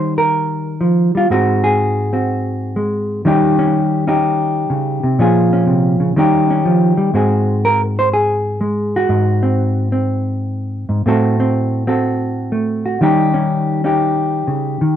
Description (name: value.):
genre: solo jazz.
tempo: 123 BPM.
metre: 4/4.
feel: swing 68% on 8ths.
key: Eb mixolydian.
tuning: A4 = 440 Hz.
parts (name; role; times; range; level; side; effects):
hollow-body jazz guitar; solo; 0.0-15.0 s; Ab2 to C5; -14 LUFS; equal; none.
room: light reverb.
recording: close, detailed microphones.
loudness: -14 LUFS.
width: side -10 dB against mid.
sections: 0.0-15.0 A section.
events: none.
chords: 0.0 Eb7; 1.3 Ab7; 3.2 Eb7; 5.2 Bbm7; 6.2 Eb7; 7.1 Ab7; 11.1 Am6; 13.0 Eb7.